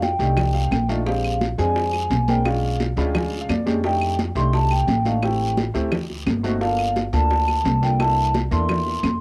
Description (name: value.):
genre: Afro-Cuban jazz.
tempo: 173 BPM.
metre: 4/4.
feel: straight.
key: unclear.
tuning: A4 = 442 Hz.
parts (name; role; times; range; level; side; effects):
vibraphone with medium mallets; melody; 0.0-9.2 s; F5 to C6; -26 LUFS; equal; cassette tape, plate reverb.
warm baby grand piano; accompaniment; 0.0-9.0 s; Ab3 to B5; -29 LUFS; equal; cassette tape, plate reverb.
upright bass; bass; 0.0-9.2 s; G1 to F2; -26 LUFS; equal; none.
bongos; percussion; 0.0-9.2 s; none; -32 LUFS; equal; none.
congas; percussion; 0.0-9.2 s; none; -29 LUFS; equal; none.
guiro; percussion; 0.0-9.2 s; none; -40 LUFS; equal; none.
claves; percussion; 0.4-9.2 s; none; -35 LUFS; equal; none.
room: light reverb.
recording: home recording on cassette.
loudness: -21 LUFS.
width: mono.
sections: 0.0-9.2 A section.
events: grand piano fill 0.4-1.1, 2.8-3.8.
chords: 0.0 F13; 1.1 Bb13; 2.5 Bdim7; 3.8 F13; 5.2 Am7; 5.9 D7b9; 6.6 Gm7; 8.0 C13.